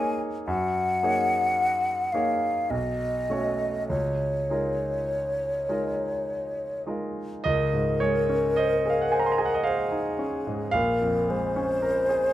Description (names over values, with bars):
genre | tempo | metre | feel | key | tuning
classical, impressionist duo for flute and grand piano | 49-56 BPM | 3/4 | rubato | Db major | A4 = 440 Hz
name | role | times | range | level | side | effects
mellow hollow concert flute | melody | 0.0-12.3 s | Ab4 to Ab5 | -26 LUFS | left 1 dB | none
clear concert grand piano | accompaniment | 0.0-12.3 s | Bb1 to C6 | -27 LUFS | right 1 dB | none
room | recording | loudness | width
moderate recital hall reverb, RT60 1.3 s | close, detailed microphones | -23 LUFS | side -13 dB against mid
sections
0.0-7.5 A section; 7.5-12.3 A section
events
none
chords
0.5 Gb69; 2.7 Cb9; 3.9 Db69; 7.5 Dbmaj9; 10.8 Bbm9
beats
| 0.48 1.58 2.71 | 3.89 5.10 6.27 | 7.46 8.59 9.67 | 10.75 11.82